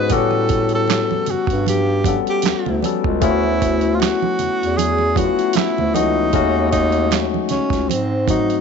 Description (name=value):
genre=R&B, neo-soul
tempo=77 BPM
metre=4/4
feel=swing 56% on 16ths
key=unclear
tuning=A4 = 440 Hz
part: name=breathy tenor saxophone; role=melody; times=0.0-8.6 s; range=B#3 to B4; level=-20 LUFS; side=right 1 dB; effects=none
part: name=barky tine electric piano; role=accompaniment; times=0.0-8.6 s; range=E3 to F#5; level=-20 LUFS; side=left 13 dB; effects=overdrive, auto-pan
part: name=breathy bass clarinet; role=bass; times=0.0-8.6 s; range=C#2 to A2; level=-22 LUFS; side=right 2 dB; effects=none
part: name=dusty soul sampler-style drum kit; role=drums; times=0.1-8.6 s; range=handclaps, hi-hat, kick drum, snare drum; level=-23 LUFS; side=right 6 dB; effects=none
part: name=congas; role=percussion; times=0.1-8.5 s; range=none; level=-27 LUFS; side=right 17 dB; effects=none
room=little or no reverb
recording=1960s-style stereo with parts hard left and right, nothing above 7.8 kHz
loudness=-15 LUFS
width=side -6 dB against mid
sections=0.0-8.6 A section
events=none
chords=0.1 A13; 3.2 D6; 6.3 D#m7b5; 7.9 G#7b9